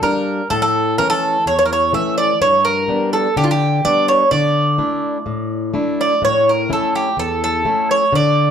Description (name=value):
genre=greek folk, Greek bouzouki band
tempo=126 BPM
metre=4/4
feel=straight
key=unclear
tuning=A4 = 440 Hz
part: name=Greek bouzouki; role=melody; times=0.0-8.5 s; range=F4 to E5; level=-15 LUFS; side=right 2 dB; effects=none
part: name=fingerpicked plugged-in swing-style acoustic guitar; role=accompaniment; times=0.0-8.5 s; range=E2 to E4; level=-19 LUFS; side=left 2 dB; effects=none
room=wet small room reverb, RT60 0.5 s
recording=heard from further back in the room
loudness=-14 LUFS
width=side -8 dB against mid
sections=0.0-8.5 A section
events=none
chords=0.0 Gm; 0.5 A; 2.4 G; 4.3 Dsus2; 6.2 A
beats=0.03 | 0.51 0.98 1.46 1.94 | 2.41 2.89 3.36 3.84 | 4.32 4.79 5.27 5.75 | 6.22 6.70 7.18 7.65 | 8.13